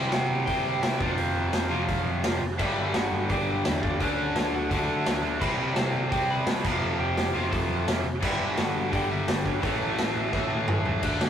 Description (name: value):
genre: punk rock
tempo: 171 BPM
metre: 4/4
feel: straight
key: unclear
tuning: A4 = 440 Hz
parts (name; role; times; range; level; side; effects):
- lightly driven lead guitar; melody; 0.0-11.3 s; C4 to B5; -34 LUFS; equal; none
- crunchy overdriven guitar; riff; 0.0-11.3 s; F2 to D4; -28 LUFS; left 2 dB; none
- tight distorted guitar; riff; 0.0-11.3 s; F2 to D4; -32 LUFS; right 4 dB; distortion
- overdriven picked electric bass; bass; 0.0-11.3 s; F1 to D3; -33 LUFS; equal; none
- raw garage drum kit; drums; 0.1-11.3 s; crash cymbal, hi-hat, kick drum, snare drum, toms; -29 LUFS; equal; none
room: moderate booth ambience, RT60 0.3 s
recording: rough rehearsal-room recording, warm saturation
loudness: -24 LUFS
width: side -9 dB against mid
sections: 0.0-11.0 A section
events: half time 0.0-11.0; drum fill 10.3-11.0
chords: 0.0 C; 1.0 F5; 2.6 G5; 4.0 D; 5.4 C5; 6.6 F; 8.2 G5; 9.6 A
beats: 0.13 0.48 0.83 | 1.18 1.54 1.89 2.24 | 2.59 2.94 3.30 3.65 | 4.00 4.35 4.71 5.06 | 5.41 5.76 6.11 6.46 | 6.82 7.17 7.52 7.87 | 8.22 8.57 8.93 9.28 | 9.63 9.98 10.33 10.68 | 11.03